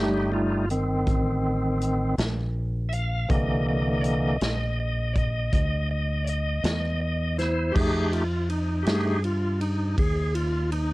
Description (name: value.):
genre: slow blues.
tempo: 54 BPM (dotted quarters).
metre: 12/8.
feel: straight.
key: F mixolydian.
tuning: A4 = 436 Hz.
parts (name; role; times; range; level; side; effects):
bright tonewheel organ; sustained chords; 0.0-10.9 s; D3 to F5; -26 LUFS; equal; slow rotary speaker, cassette tape.
fingered electric bass; bass; 0.0-10.9 s; G1 to G2; -27 LUFS; equal; none.
natural country drum kit; drums; 0.7-10.9 s; crash cymbal, hi-hat, kick drum, ride cymbal, snare drum; -28 LUFS; equal; cassette tape.
room: little or no reverb.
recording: home recording on cassette.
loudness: -23 LUFS.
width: side -20 dB against mid.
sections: 0.0-7.8 A section; 7.8-10.9 A section.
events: tonewheel organ solo 0.0-7.8, 7.8-10.9.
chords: 0.0 F9; 3.3 C9; 7.8 F9.